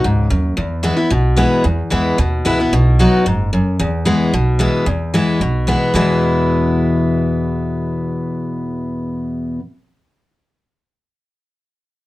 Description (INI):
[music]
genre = bluegrass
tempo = 224 BPM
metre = 4/4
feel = straight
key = E major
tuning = A4 = 441 Hz
[part]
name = picked steel-string acoustic guitar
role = accompaniment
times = 0.0-9.6 s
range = E2 to F#4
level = -15 LUFS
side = left 1 dB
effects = none
[part]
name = upright bass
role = bass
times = 0.0-9.5 s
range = F#1 to E2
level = -19 LUFS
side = right 1 dB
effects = none
[sound]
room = moderate studio ambience, RT60 0.5 s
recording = dark, warm production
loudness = -14 LUFS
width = side -17 dB against mid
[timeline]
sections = 0.0-4.9 A section; 4.9-5.9 B section; 5.9-8.1 C section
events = none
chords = 0.0 B (rootless); 0.6 E; 2.7 B; 3.8 E